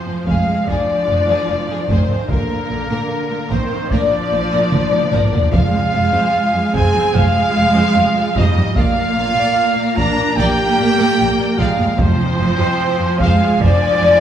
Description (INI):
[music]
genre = cinematic, epic orchestral film score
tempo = 74 BPM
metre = 4/4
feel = straight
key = F dorian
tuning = A4 = 440 Hz
[part]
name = rich studio violin section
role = melody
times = 0.0-14.2 s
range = Bb4 to Bb5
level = -22 LUFS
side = left 6 dB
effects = none
[part]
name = concert flute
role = second line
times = 0.0-14.2 s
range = Bb4 to Bb5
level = -23 LUFS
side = left 1 dB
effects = none
[part]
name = rich symphonic violin section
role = second line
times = 0.0-14.2 s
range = Ab4 to Bb5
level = -30 LUFS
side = left 2 dB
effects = none
[part]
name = rich studio viola section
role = accompaniment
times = 0.0-14.2 s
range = D3 to D4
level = -21 LUFS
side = right 2 dB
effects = none
[part]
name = warm French horn section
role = sustained chords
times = 0.0-14.2 s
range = Bb3 to Bb4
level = -24 LUFS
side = equal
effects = none
[part]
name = warm trumpet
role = stabs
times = 0.0-14.2 s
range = Bb4 to Bb5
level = -22 LUFS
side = right 2 dB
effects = none
[part]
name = timpani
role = percussion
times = 0.0-0.2, 5.5-6.7, 12.0-13.2 s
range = F2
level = -24 LUFS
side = equal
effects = none
[part]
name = rich symphonic cello section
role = bass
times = 0.1-14.1 s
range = F2 to Bb2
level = -23 LUFS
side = right 2 dB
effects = none
[part]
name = rich symphonic double bass section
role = bass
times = 0.3-14.1 s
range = F1 to Bb1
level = -21 LUFS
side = right 2 dB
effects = none
[part]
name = taiko ensemble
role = drums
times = 0.3-14.2 s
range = none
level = -22 LUFS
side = equal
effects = none
[sound]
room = wet concert hall reverb, RT60 1.8 s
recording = small room ambience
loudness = -13 LUFS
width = side -9 dB against mid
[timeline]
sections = 0.0-14.2 A section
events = drum fill 4.7-5.5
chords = 0.0 Fm; 2.3 Bb; 5.5 Fm; 8.8 Bb; 12.0 Fm